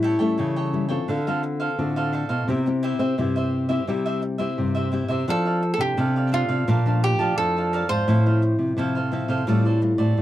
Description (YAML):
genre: samba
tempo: 86 BPM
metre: 4/4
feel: straight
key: F major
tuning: A4 = 440 Hz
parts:
  - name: cavaquinho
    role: accompaniment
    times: 0.0-10.2 s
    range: D4 to A5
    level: -29 LUFS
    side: right 4 dB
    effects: none
  - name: nylon-string guitar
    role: accompaniment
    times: 0.0-10.2 s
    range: F2 to A4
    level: -28 LUFS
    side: left 5 dB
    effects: none
  - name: nylon-string guitar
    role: bass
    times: 0.0-10.2 s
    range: Ab2 to C4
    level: -22 LUFS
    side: equal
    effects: none
  - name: cavaquinho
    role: melody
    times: 5.3-8.6 s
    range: F4 to C5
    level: -24 LUFS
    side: right 2 dB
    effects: none
room: little or no reverb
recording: dry, close 1970s-style studio recording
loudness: -20 LUFS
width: side -13 dB against mid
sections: 0.0-5.3 A section; 5.3-10.2 B section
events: none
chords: 0.0 A7; 1.1 Dm7; 2.5 C; 5.3 F6; 6.7 Bbmaj7; 8.1 Fmaj7/A; 9.5 Dm7/A